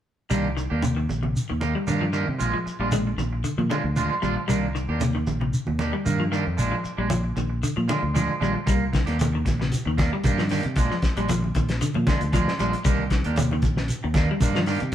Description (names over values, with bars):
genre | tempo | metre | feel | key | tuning
afrobeat | 115 BPM | 4/4 | swing 53% on 16ths | C minor | A4 = 440 Hz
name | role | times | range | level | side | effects
clean electric guitar | arpeggios | 0.3-14.9 s | C3 to Ab3 | -29 LUFS | left 3 dB | none
electric guitar at the edge of break-up | stabs | 0.3-14.8 s | Eb3 to G4 | -28 LUFS | right 3 dB | spring reverb
fingered electric bass | bass | 0.3-14.9 s | Bb1 to C3 | -26 LUFS | equal | none
shekere | percussion | 0.3-14.8 s | none | -30 LUFS | right 1 dB | none
congas | percussion | 0.8-14.6 s | none | -30 LUFS | right 2 dB | none
cloth-damped thuddy drum kit | drums | 8.7-14.9 s | hi-hat, kick drum, snare drum | -25 LUFS | left 1 dB | none
room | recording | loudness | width
moderate studio reverb, RT60 0.8 s | band playing live in one room | -21 LUFS | side -11 dB against mid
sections
0.3-14.9 A section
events
none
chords
0.3 Cm9; 2.4 Bb7; 4.5 Cm9; 6.6 Bb7; 8.7 Cm9; 10.8 Bb7; 12.9 Cm9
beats
| 0.31 0.83 1.35 1.88 | 2.40 2.92 3.45 3.97 | 4.49 5.02 5.54 6.07 | 6.59 7.11 7.64 8.16 | 8.68 9.21 9.73 10.25 | 10.78 11.30 11.82 12.34 | 12.86 13.38 13.90 14.42 | 14.94